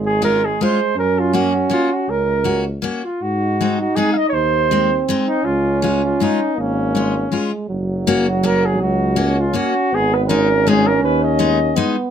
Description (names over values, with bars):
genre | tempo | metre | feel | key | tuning
alpine folk, alpine dance band | 161 BPM | 3/4 | swing 54% on 8ths | Db major, F# major from 7.7 s | A4 = 442 Hz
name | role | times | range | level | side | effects
clear euphonium | second line | 0.0-12.1 s | F#3 to Eb4 | -21 LUFS | right 4 dB | none
warm tuba | bass | 0.0-11.8 s | F#1 to Ab2 | -22 LUFS | left 1 dB | none
mellow flugelhorn | melody | 0.1-11.9 s | Db4 to F5 | -19 LUFS | right 1 dB | none
picked steel-string acoustic guitar | accompaniment | 0.2-12.0 s | Ab3 to Gb4 | -20 LUFS | left 5 dB | none
room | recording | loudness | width
light reverb | close, detailed microphones | -15 LUFS | side -8 dB against mid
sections
0.0-7.7 A section; 7.7-12.1 B section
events
none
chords
0.0 Db; 1.0 Gb; 3.2 Ab7; 5.5 Db; 7.7 F#; 9.9 G#m